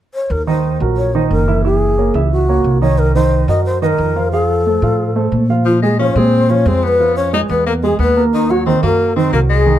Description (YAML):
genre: jazz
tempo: 180 BPM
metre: 4/4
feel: straight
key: unclear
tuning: A4 = 438 Hz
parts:
  - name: long shakuhachi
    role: melody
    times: 0.1-9.8 s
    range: Eb4 to Eb5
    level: -17 LUFS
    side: left 2 dB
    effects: plate reverb
  - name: upright bass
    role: bass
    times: 0.3-9.8 s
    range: Gb1 to Bb2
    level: -16 LUFS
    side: equal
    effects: none
  - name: dark grand piano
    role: accompaniment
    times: 0.5-9.8 s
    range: Eb3 to F5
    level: -18 LUFS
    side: right 5 dB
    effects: none
  - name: warm tenor saxophone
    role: second line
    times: 5.7-9.8 s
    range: Eb3 to Eb4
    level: -20 LUFS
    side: left 7 dB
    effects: none
room: light reverb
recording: dark, warm production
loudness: -12 LUFS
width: side -12 dB against mid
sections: 0.3-5.7 A section; 5.7-9.8 B section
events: none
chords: 0.3 Ebm; 1.6 Gb7; 3.0 Cm7b5; 4.3 F; 5.7 Bbsus2; 7.0 Db7; 7.7 E; 8.3 Ebm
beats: | 0.30 0.64 0.97 1.31 | 1.64 1.98 2.31 2.65 | 2.98 3.32 3.65 3.99 | 4.32 4.66 4.99 5.32 | 5.66 5.99 6.33 6.66 | 6.99 7.33 7.66 8.00 | 8.33 8.66 8.99 9.33 | 9.66